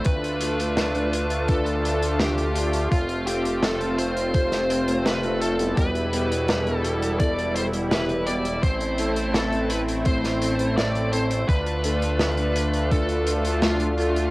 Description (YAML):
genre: synthwave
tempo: 84 BPM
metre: 4/4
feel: straight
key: unclear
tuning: A4 = 440 Hz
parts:
  - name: bluesy overdriven lead guitar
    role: melody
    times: 0.0-14.3 s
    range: F4 to D5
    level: -27 LUFS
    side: equal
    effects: distortion, cassette tape, tape echo
  - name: brassy analog pad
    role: sustained chords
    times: 0.0-14.3 s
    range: B2 to F4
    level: -28 LUFS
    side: equal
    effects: chorus, sidechain pumping, cassette tape
  - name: chorused synth bass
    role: bass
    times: 0.0-14.3 s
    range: E1 to D2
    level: -27 LUFS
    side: equal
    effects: tube saturation, sidechain pumping
  - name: natural country drum kit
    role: drums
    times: 0.0-14.3 s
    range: hi-hat, snare drum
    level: -28 LUFS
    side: equal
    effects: cassette tape
  - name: electronic kick drum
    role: drums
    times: 0.1-13.1 s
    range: none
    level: -22 LUFS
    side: equal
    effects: overdrive, cassette tape
  - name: mellow synth brass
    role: stabs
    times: 0.4-14.2 s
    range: G3 to C5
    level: -29 LUFS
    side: left 1 dB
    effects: chorus, cassette tape
room: moderate booth ambience, RT60 0.2 s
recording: home recording on cassette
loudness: -21 LUFS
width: side -20 dB against mid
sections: 0.0-14.3 A section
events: none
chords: 0.1 Dm; 2.9 F; 5.8 Em; 8.6 Am; 11.5 Dm